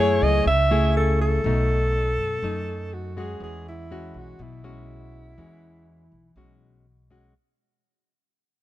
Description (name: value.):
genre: bossa nova.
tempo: 122 BPM.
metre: 4/4.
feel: straight.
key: E major.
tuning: A4 = 441 Hz.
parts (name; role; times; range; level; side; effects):
breathy alto saxophone; melody; 0.0-6.9 s; E4 to E5; -25 LUFS; right 1 dB; none.
nylon-string guitar; accompaniment; 0.0-7.3 s; F#2 to G#4; -26 LUFS; left 2 dB; none.
upright bass; bass; 0.0-7.3 s; B1 to F#2; -26 LUFS; right 1 dB; none.
room: light reverb.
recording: dark, warm production.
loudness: -20 LUFS.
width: side -14 dB against mid.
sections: 0.0-7.3 A section.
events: fade-out 0.0-7.3.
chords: 0.0 F#m9; 1.4 B13; 3.4 E69.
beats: 0.46 0.95 | 1.45 1.94 2.43 2.92 | 3.41 3.90 4.39 4.89 | 5.38 5.87 6.36 6.85.